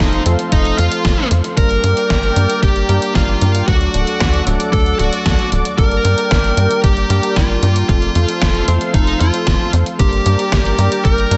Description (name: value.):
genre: italo disco.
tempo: 114 BPM.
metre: 4/4.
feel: straight.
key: G minor.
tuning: A4 = 437 Hz.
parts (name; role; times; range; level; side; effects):
smooth overdriven lead guitar; melody; 0.0-11.4 s; Eb4 to Bb4; -21 LUFS; equal; delay.
lush unison pad; sustained chords; 0.0-11.4 s; A4 to D6; -25 LUFS; equal; chorus.
bell-like tine electric piano; stabs; 0.0-11.4 s; F3 to Bb4; -25 LUFS; equal; low-pass filter.
tight sequencer bass; bass; 0.0-11.4 s; D1 to G2; -19 LUFS; equal; none.
electronic kick drum; drums; 0.0-11.2 s; none; -19 LUFS; equal; overdrive.
detuned 8-bit digital drum machine; drums; 0.1-11.4 s; hi-hat, snare drum; -24 LUFS; equal; overdrive, gated reverb.
room: light reverb.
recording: nothing above 8.0 kHz.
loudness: -15 LUFS.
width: mono.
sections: 0.0-11.4 A section.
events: filter sweep on tine electric piano 0.0-11.4.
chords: 0.0 F; 1.6 Gm; 3.7 D; 5.8 Gm; 7.9 F; 10.0 Gm.